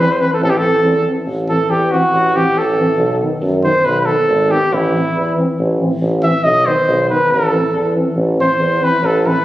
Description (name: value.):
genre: balkan folk, Balkan brass band.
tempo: 139 BPM.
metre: 2/4.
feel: swing 55% on 16ths.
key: A dorian sharp4.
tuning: A4 = 441 Hz.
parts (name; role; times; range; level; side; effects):
mellow trumpet; melody; 0.0-9.4 s; E4 to E5; -15 LUFS; equal; none.
mellow trombone; accompaniment; 0.0-9.3 s; B3 to C4; -24 LUFS; left 1 dB; none.
warm euphonium; accompaniment; 0.0-9.3 s; D#3 to E3; -21 LUFS; right 1 dB; none.
clear tuba; bass; 0.0-9.3 s; G#1 to F#2; -18 LUFS; equal; none.
room: wet recital hall reverb, RT60 1.6 s.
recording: recorded on a phone in the room, club reverb, compression.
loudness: -12 LUFS.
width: side -15 dB against mid.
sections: 0.0-1.3 A section; 1.3-9.4 B section.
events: trumpet solo 1.3-9.4.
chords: 0.0 Am; 3.0 B; 4.7 Am; 6.5 B; 7.3 Am.